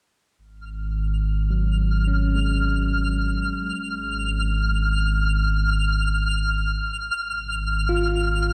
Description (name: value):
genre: ambient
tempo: 71 BPM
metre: 4/4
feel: straight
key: unclear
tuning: A4 = 440 Hz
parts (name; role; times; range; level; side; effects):
- warm sub bass; bass; 0.4-8.5 s; Ab1; -25 LUFS; equal; none
- twinkling granular texture; texture; 1.7-8.5 s; F6; -29 LUFS; equal; built-in reverb
- bell-like tine electric piano; arpeggios; 1.5-8.5 s; Gb3 to F4; -32 LUFS; equal; analog delay
room: moderate lush hall reverb, RT60 2.6 s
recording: dreamy mix soaked in reverb, cassette tape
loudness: -23 LUFS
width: mono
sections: 0.4-8.5 A section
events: fade-in on tine electric piano 0.4-8.5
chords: 0.4 Ab7sus4; 3.8 Fm/Ab